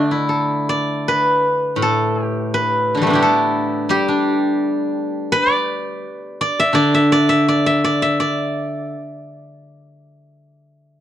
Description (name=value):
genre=chinese traditional, Chinese solo plucked strings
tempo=76-87 BPM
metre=4/4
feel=rubato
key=D zhi mode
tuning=A4 = 440 Hz
part: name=steel-string zither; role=solo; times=0.0-10.4 s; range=A2 to E5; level=-16 LUFS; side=equal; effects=none
room=light reverb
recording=dry, close 1970s-style studio recording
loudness=-15 LUFS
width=side -11 dB against mid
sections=0.0-11.0 A section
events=none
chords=none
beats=0.31 1.05 1.78 | 2.51 3.21 3.91 4.61 | 5.32 6.03 6.74 7.46 | 8.19 8.93 9.67